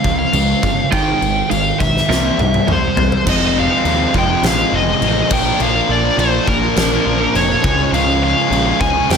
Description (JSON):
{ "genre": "quiet-loud alternative rock", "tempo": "103 BPM", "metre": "4/4", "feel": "straight", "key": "F minor", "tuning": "A4 = 436 Hz", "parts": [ { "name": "smooth overdriven lead guitar", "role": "melody", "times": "0.0-9.2 s", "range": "Bb4 to Ab5", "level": "-18 LUFS", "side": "left 1 dB", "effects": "none" }, { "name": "twelve-string electric guitar", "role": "arpeggios", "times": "0.0-3.2 s", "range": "C3 to F4", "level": "-24 LUFS", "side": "right 6 dB", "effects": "tremolo" }, { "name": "fuzz guitar", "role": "riff", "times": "0.0-9.2 s", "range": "F2 to D4", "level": "-20 LUFS", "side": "left 10 dB", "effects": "distortion" }, { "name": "thick fuzz guitar", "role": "riff", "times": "0.0-9.2 s", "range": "F2 to D4", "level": "-20 LUFS", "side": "right 12 dB", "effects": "distortion" }, { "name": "growling picked electric bass", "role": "bass", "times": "0.0-9.2 s", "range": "F1 to F2", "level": "-21 LUFS", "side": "equal", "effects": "overdrive" }, { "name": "oversized low-tuned drum kit", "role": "drums", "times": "0.0-9.2 s", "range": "crash cymbal, kick drum, snare drum, toms", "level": "-19 LUFS", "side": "equal", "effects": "none" } ], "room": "moderate large studio reverb, RT60 0.9 s, small room ambience", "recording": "none", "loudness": "-13 LUFS", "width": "side -6 dB against mid", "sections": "0.0-3.3 A section; 3.3-9.2 B section", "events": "drum fill 2.1-3.3", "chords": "0.0 Db; 0.9 Ab5; 2.1 C7; 3.3 Fm7; 5.3 Bb; 7.6 Db", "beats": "0.34 | 0.93 1.51 2.10 2.68 | 3.26 3.85 4.43 5.01 | 5.60 6.18 6.76 7.35 | 7.93 8.51 9.10" }